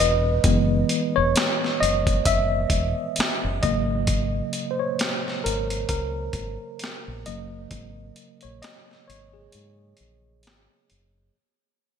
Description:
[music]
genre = R&B, neo-soul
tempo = 66 BPM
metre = 4/4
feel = swing 57% on 16ths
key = unclear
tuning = A4 = 435 Hz
[part]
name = tine electric piano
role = accompaniment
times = 0.0-11.4 s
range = C#3 to E5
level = -24 LUFS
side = equal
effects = medium stereo tremolo
[part]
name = deep dub fingered electric bass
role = bass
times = 0.0-11.3 s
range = E1 to G#2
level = -27 LUFS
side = equal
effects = none
[part]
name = boom bap sampler-style drum kit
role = drums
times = 0.4-11.1 s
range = hi-hat, kick drum, snare drum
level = -25 LUFS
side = equal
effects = gated reverb
[sound]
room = light reverb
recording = bright 1980s-style digital production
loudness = -21 LUFS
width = side -8 dB against mid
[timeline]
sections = 0.0-11.3 A section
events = fade-out 0.0-11.3; tine electric piano solo 0.0-11.3; break 9.5-11.3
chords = 0.0 F#9sus4; 3.6 G#9sus4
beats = | 0.44 1.35 2.25 3.16 | 4.07 4.98 5.89 6.80 | 7.71 8.62 9.53 10.44

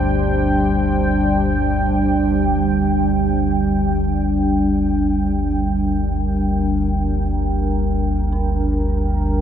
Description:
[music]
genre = dark ambient drone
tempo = free time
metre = none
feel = none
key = unclear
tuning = A4 = 440 Hz
[part]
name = deep dark ambient pad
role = sustained chords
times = 0.0-9.4 s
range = G3 to G5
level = -18 LUFS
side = equal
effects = chorus, built-in reverb
[part]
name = deep rumbling drone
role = drone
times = 0.0-9.4 s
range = G1 to D2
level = -20 LUFS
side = equal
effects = built-in reverb
[part]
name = dark detuned synth bell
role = arpeggios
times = 8.3-9.4 s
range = D4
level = -34 LUFS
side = equal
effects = chorus, phaser
[sound]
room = wet huge ambient reverb, RT60 7.8 s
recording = dark, warm production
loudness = -16 LUFS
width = side -9 dB against mid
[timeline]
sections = 0.0-2.6 A section; 2.6-9.4 B section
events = fade-in on synth bell 2.6-9.4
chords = 0.0 G5; 2.6 Gm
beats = free time

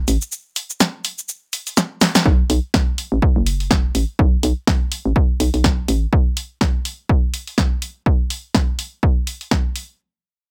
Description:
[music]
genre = minimal techno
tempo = 124 BPM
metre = 4/4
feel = swing 57% on 16ths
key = unclear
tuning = A4 = 440 Hz
[part]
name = hollow knocking FM bass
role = bass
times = 0.0-6.1 s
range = F#1 to B1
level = -21 LUFS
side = equal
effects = sidechain pumping
[part]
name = punchy analog drum machine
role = drums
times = 0.1-9.9 s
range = cabasa, hi-hat, snare drum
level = -21 LUFS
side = equal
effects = none
[part]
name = electronic kick drum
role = drums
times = 2.3-9.6 s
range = none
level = -19 LUFS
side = equal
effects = none
[sound]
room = little or no reverb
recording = none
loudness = -19 LUFS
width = mono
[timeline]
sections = 0.0-2.3 A section; 2.3-10.0 B section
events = drop 0.0-2.3; drum fill 2.0; filter sweep on FM bass 2.3-6.1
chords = none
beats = | 0.32 0.80 1.29 1.77 | 2.25 2.74 3.22 3.71 | 4.19 4.67 5.16 5.64 | 6.13 6.61 7.09 7.58 | 8.06 8.54 9.03 9.51

